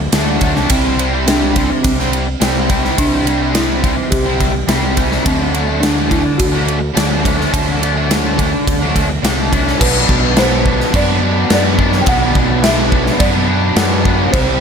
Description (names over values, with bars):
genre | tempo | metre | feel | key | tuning
rock, shoegaze and dream pop | 106 BPM | 4/4 | straight | unclear | A4 = 440 Hz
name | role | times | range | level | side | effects
crunchy overdriven guitar | riff | 0.0-14.6 s | B2 to E4 | -16 LUFS | equal | analog chorus
growling fingered electric bass | bass | 0.0-14.6 s | B1 to F#2 | -19 LUFS | equal | overdrive
gated 80s drum kit | drums | 0.1-14.5 s | crash cymbal, kick drum, ride cymbal, snare drum | -16 LUFS | equal | none
folk marimba with soft mallets | melody | 0.7-14.6 s | C4 to G5 | -21 LUFS | right 1 dB | digital delay
room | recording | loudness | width
light reverb, small room ambience | none | -12 LUFS | side -6 dB against mid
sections
0.0-9.8 A section; 9.8-14.6 B section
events
none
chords
0.0 D; 0.7 C; 5.3 D; 9.8 Bm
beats
0.13 | 0.70 1.27 1.84 2.41 | 2.98 3.54 4.11 4.68 | 5.25 5.82 6.39 6.96 | 7.53 8.10 8.66 9.23 | 9.80 10.37 10.93 11.50 | 12.07 12.63 13.20 13.77 | 14.33